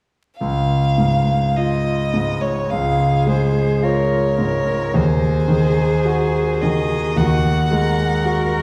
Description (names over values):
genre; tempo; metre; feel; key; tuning
classical, slow romantic movement for piano trio; 54 BPM; 4/4; rubato; Db major; A4 = 440 Hz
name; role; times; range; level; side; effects
clear violin; melody; 0.4-8.6 s; C5 to Gb5; -25 LUFS; equal; none
bright concert grand piano; accompaniment; 0.4-8.6 s; Db2 to Gb4; -20 LUFS; equal; none
warm cello; second line; 2.7-8.6 s; Gb4 to Bb4; -26 LUFS; equal; none
room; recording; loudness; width
wet recital hall reverb, RT60 1.5 s; heard from further back in the room, vinyl crackle; -18 LUFS; mono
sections
0.4-8.6 A section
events
none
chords
0.4 Db; 4.9 Ab7/Eb